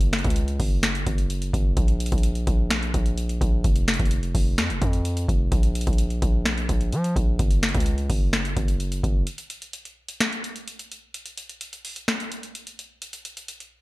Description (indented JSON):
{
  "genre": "hip hop, trap",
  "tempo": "128 BPM",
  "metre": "4/4",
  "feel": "half-time",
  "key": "unclear",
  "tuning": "A4 = 440 Hz",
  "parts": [
    { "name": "distorted 808-style bass", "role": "bass", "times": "0.0-9.3 s", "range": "F1 to F3", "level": "-25 LUFS", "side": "equal", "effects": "distortion" },
    { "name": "booming analog drum machine", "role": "drums", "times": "0.0-13.7 s", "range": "finger snaps, hi-hat, kick drum, snare drum", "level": "-23 LUFS", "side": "equal", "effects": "none" }
  ],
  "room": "little or no reverb",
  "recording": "faint mains hum",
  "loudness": "-21 LUFS",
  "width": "side -20 dB against mid",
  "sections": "0.0-9.3 A section; 9.3-13.8 B section",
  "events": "break 9.3-13.8",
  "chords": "none"
}